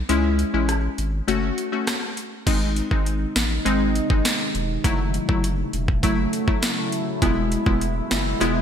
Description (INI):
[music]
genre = dancehall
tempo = 101 BPM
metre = 4/4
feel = straight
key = unclear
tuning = A4 = 440 Hz
[part]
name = saturated sub bass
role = bass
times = 0.0-8.6 s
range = E1 to C#2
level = -25 LUFS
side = equal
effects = none
[part]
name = glassy wavetable pluck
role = accompaniment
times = 0.1-8.6 s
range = F#3 to F#4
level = -24 LUFS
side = left 2 dB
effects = chorus
[part]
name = island pop drum kit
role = drums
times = 0.1-8.5 s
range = crash cymbal, hi-hat, kick drum, rim click, snare drum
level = -24 LUFS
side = equal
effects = overdrive, gated reverb
[part]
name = deep dark ambient pad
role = sustained chords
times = 3.2-8.6 s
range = B2 to E4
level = -28 LUFS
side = equal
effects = chorus, built-in reverb, sidechain pumping
[part]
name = bongos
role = percussion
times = 7.2-8.5 s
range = none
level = -33 LUFS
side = right 8 dB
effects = none
[sound]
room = moderate lush hall reverb, RT60 2.0 s, digital ambience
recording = bright 1980s-style digital production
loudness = -20 LUFS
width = side -8 dB against mid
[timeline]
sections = 0.0-2.5 A section; 2.5-8.6 B section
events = kick muted 0.1-2.5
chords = 0.1 C#m; 1.3 F#m; 2.5 G#; 4.8 F#m7; 7.2 E